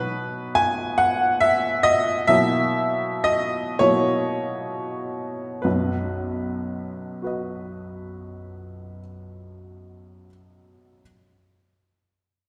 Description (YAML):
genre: classical, romantic nocturne for solo piano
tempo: 30-49 BPM (dotted quarters)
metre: 6/8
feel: rubato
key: B major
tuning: A4 = 440 Hz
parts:
  - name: warm upright piano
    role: solo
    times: 0.0-11.0 s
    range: B1 to G#5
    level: -24 LUFS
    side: equal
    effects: none
room: wet recital hall reverb, RT60 1.6 s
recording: recorded in a church or concert hall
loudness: -23 LUFS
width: mono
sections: 0.0-5.6 A section; 5.6-8.8 B section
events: slowing down 0.0-5.6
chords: 0.0 B; 2.3 F#7/B; 5.6 B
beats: 0.99 | 2.30 3.82 | 5.65 7.22